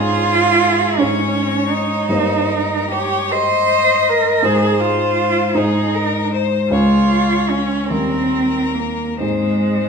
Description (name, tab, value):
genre	classical, slow romantic movement for piano trio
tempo	43-56 BPM (dotted quarters)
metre	6/8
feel	rubato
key	Ab major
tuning	A4 = 440 Hz
part	rich violin	melody	0.0-9.9 s	Ab4 to Eb5	-21 LUFS	left 10 dB	none
part	rich cello	second line	0.0-9.9 s	Ab3 to C5	-17 LUFS	right 4 dB	none
part	warm grand piano	accompaniment	0.0-9.9 s	Db2 to Db5	-19 LUFS	equal	none
room	wet recital hall reverb, RT60 1.4 s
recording	minimal, uncompressed stereo recording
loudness	-14 LUFS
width	side -5 dB against mid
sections	0.0-9.9 A section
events	none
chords	0.0 Db/Ab; 2.1 Eb7/G; 4.4 Ab; 6.7 Db; 7.9 Eb7; 9.2 Ab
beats	0.99 | 2.10 3.33 | 4.45 5.56 | 6.72 7.91 | 9.23